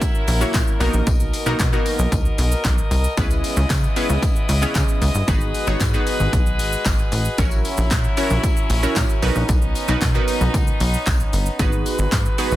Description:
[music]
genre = dance-pop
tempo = 114 BPM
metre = 4/4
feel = straight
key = unclear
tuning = A4 = 441 Hz
[part]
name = glassy wavetable pluck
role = accompaniment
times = 0.0-12.6 s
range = A#3 to C#5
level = -25 LUFS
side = right 1 dB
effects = chorus, sidechain pumping
[part]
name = muted French horn section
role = sustained chords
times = 0.0-12.6 s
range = B2 to D#5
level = -26 LUFS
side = left 1 dB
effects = sidechain pumping
[part]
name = punchy analog drum machine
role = drums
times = 0.0-12.6 s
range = handclaps, hi-hat, kick drum, shaker, snare drum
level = -21 LUFS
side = equal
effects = none
[part]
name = tambourine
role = percussion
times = 0.0-12.5 s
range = none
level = -37 LUFS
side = left 9 dB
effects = none
[part]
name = plucky analog bass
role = bass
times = 0.3-12.6 s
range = G1 to C#3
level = -20 LUFS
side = equal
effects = sidechain pumping
[sound]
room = digital ambience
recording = dense, heavily limited modern master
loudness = -17 LUFS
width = side -15 dB against mid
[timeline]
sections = 0.0-12.6 A section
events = none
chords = 0.0 F#7; 0.8 Bmaj7; 3.2 C#m7; 5.3 G#m7; 7.4 F#7/A#; 9.2 Bmaj7; 11.6 G#m7

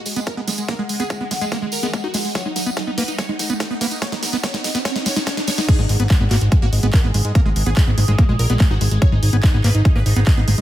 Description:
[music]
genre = psychedelic trance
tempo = 144 BPM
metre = 4/4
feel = straight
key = G# minor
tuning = A4 = 440 Hz
[part]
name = overtone-sweeping drone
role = sustained chords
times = 0.1-10.6 s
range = G#4 to F#5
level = -33 LUFS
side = left 2 dB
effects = chorus, built-in reverb, sidechain pumping
[part]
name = riser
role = sound effects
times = 1.2-5.7 s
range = none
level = -30 LUFS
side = right 2 dB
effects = none
[part]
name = supersaw stab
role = melody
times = 0.1-10.6 s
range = G#3 to D#5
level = -26 LUFS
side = right 1 dB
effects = phaser, sidechain pumping, digital delay
[part]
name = big-room dance drum kit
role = drums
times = 0.1-10.6 s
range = crash cymbal, handclaps, hi-hat, snare drum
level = -26 LUFS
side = equal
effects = high-pass filter on hats, studio reverb, high-pass filter on snare, high-pass filter on cymbals
[part]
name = tambourine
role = percussion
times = 0.1-5.7 s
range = none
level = -30 LUFS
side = right 6 dB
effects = none
[part]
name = overdriven acid bass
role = riff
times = 0.2-10.5 s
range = G#3 to D#4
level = -26 LUFS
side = moving between left 5 dB and right 6 dB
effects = auto-pan, sidechain pumping, digital delay
[part]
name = electronic kick drum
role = drums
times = 0.3-10.4 s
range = none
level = -16 LUFS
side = equal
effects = high-pass filter on kick, studio reverb
[part]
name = fat analog bass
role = bass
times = 5.8-10.6 s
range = G#1 to G#2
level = -17 LUFS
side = equal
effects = none
[sound]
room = digital ambience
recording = none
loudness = -16 LUFS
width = side -13 dB against mid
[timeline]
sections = 0.0-5.7 A section; 5.7-10.6 B section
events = build-up 0.0-5.7; drum fill 0.0-5.7; riser 1.2-5.7; drop 5.7-10.6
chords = 0.0 G#5

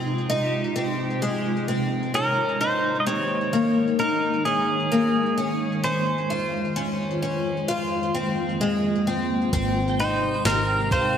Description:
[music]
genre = dream pop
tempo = 65 BPM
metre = 4/4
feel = straight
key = unclear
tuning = A4 = 436 Hz
[part]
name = pedal steel guitar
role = melody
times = 0.0-11.2 s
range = Ab4 to Eb5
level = -26 LUFS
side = right 1 dB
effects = digital delay
[part]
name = ethereal airy pad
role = sustained chords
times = 0.0-11.2 s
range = F2 to C5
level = -27 LUFS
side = right 1 dB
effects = ensemble chorus, built-in reverb, tremolo
[part]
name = picked twelve-string acoustic guitar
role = arpeggios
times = 0.0-11.2 s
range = C3 to F4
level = -25 LUFS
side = left 2 dB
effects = lush chorus, digital delay
[part]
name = vintage muted picked electric bass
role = bass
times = 9.5-11.2 s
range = Ab1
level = -28 LUFS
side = equal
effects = none
[part]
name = gated 80s digital drum machine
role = drums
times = 9.5-11.1 s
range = hi-hat, kick drum, snare drum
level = -26 LUFS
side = equal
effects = gated reverb, gated reverb snare
[part]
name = shimmering bell with halo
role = texture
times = 9.9-11.2 s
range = F5 to G5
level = -35 LUFS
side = right 4 dB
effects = ensemble chorus, tremolo, digital delay
[sound]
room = wet lush hall reverb, RT60 2.5 s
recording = bright 1980s-style digital production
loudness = -21 LUFS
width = side -8 dB against mid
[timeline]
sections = 0.0-11.2 A section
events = none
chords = 0.0 Fm7; 2.1 Eb7sus4; 5.8 Dbmaj7/F; 9.5 Abmaj7

